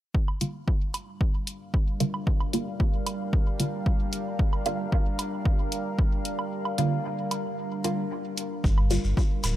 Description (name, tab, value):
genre	dub techno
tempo	113 BPM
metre	4/4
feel	straight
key	G minor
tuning	A4 = 439 Hz
part	deep dark ambient pad	sustained chords	1.1-9.6 s	G3 to F5	-33 LUFS	equal	chorus, built-in reverb, sidechain pumping
part	electronic kick drum	drums	0.1-9.3 s	none	-24 LUFS	equal	overdrive
part	woodblock	percussion	0.3-9.5 s	none	-38 LUFS	right 4 dB	sidechain pumping on perc, dub echo
part	filtered dub chord stab	stabs	0.4-9.1 s	D3 to F4	-31 LUFS	right 2 dB	phaser, sidechain pumping, dub echo
part	electronic hi-hat	drums	0.4-9.5 s	none	-33 LUFS	left 1 dB	none
part	warm sub bass	bass	8.6-9.5 s	D1 to G1	-24 LUFS	equal	tube saturation, sidechain pumping
part	shekere	percussion	8.6-9.5 s	none	-36 LUFS	left 3 dB	none
room	digital ambience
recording	none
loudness	-25 LUFS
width	side -13 dB against mid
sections	0.1-8.6 A section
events	filter sweep on synth stab 0.1-8.6; break 6.5-8.6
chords	0.1 Gm7